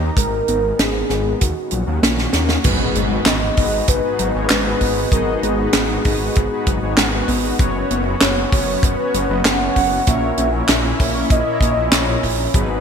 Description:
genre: synthwave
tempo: 97 BPM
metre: 4/4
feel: straight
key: G# minor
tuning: A4 = 440 Hz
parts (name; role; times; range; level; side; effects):
- lush unison pad; sustained chords; 0.0-12.8 s; D#3 to A#5; -26 LUFS; left 1 dB; chorus, sidechain pumping
- thumb-piano-like synth pluck; arpeggios; 0.0-12.8 s; F#3 to C#5; -28 LUFS; right 1 dB; chorus, digital delay
- wide detuned saw bass; bass; 0.0-12.8 s; F#1 to D#2; -22 LUFS; equal; chorus
- warm velvety synth lead; melody; 0.2-12.4 s; F#4 to F#5; -22 LUFS; equal; chorus, ping-pong delay
- kick drum; drums; 0.2-12.7 s; none; -18 LUFS; equal; none
- tight funk drum kit; drums; 0.2-12.7 s; crash cymbal, handclaps, hi-hat, snare drum; -19 LUFS; right 1 dB; gated reverb
- mellow synth brass; stabs; 2.6-12.8 s; G#2 to D#5; -24 LUFS; left 2 dB; chorus
- impact; sound effects; 2.6-5.1 s; none; -26 LUFS; equal; none
room: moderate lush hall reverb, RT60 2.1 s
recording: bright 1980s-style digital production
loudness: -15 LUFS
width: side -7 dB against mid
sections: 0.0-2.6 A section; 2.6-12.8 B section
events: drum fill 2.2-2.6; impact 2.6-5.1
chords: 0.2 G#m; 1.4 D#m7; 2.6 G#m7; 7.6 F#sus4; 10.1 A#dim

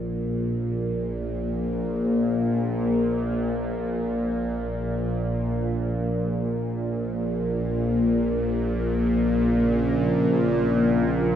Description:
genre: dark ambient drone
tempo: free time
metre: none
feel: none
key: Bb minor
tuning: A4 = 440 Hz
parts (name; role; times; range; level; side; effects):
- bowed-like drone; drone; 0.0-11.4 s; Bb1 to Bb2; -22 LUFS; equal; built-in reverb, phaser
- dark analog pad; sustained chords; 9.7-11.4 s; Db4 to F4; -27 LUFS; right 2 dB; chorus
room: wet huge ambient reverb, RT60 8.4 s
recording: none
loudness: -22 LUFS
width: side -9 dB against mid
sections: 0.0-11.4 A section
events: filter sweep on synth drone 0.0-11.4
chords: 0.0 Bbm

